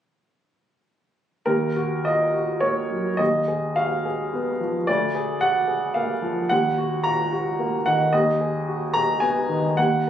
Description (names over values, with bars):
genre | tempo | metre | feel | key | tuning
classical, romantic character piece for solo piano | 100-114 BPM | 3/4 | rubato | Eb minor | A4 = 440 Hz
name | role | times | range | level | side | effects
clear upright piano | solo | 1.5-10.1 s | D2 to Bb5 | -20 LUFS | equal | none
room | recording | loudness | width
light reverb | recorded on a phone in the room, club reverb | -20 LUFS | side -10 dB against mid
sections
1.5-10.1 A section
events
none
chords
1.5 Ebm; 3.2 Fm7b5/Eb; 4.9 Bb7/D; 6.5 Ebm; 8.1 Abm/Eb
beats
| 1.47 2.06 2.62 | 3.19 3.77 4.33 | 4.88 5.42 5.96 | 6.51 7.05 7.59 | 8.12 8.67 9.21 | 9.77